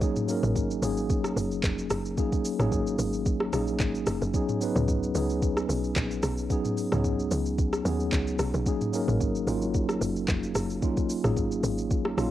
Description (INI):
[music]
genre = amapiano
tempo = 111 BPM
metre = 4/4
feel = swing 55% on 16ths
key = unclear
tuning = A4 = 439 Hz
[part]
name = mellow tine electric piano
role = accompaniment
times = 0.0-12.3 s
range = Gb3 to Db5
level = -28 LUFS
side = equal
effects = medium stereo tremolo, cassette tape
[part]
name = smooth R&B drum kit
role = drums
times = 0.0-12.3 s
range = handclaps, hi-hat, kick drum, rim click, shaker, toms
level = -29 LUFS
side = equal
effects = overdrive, cassette tape
[part]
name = tight log drum bass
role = bass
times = 0.4-12.3 s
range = F1 to Eb2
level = -31 LUFS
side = equal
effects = none
[sound]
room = digital ambience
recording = home recording on cassette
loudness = -25 LUFS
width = side -13 dB against mid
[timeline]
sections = 0.0-12.3 A section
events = none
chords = 0.0 Ab9sus4; 4.3 Db9sus4; 8.7 Ab9sus4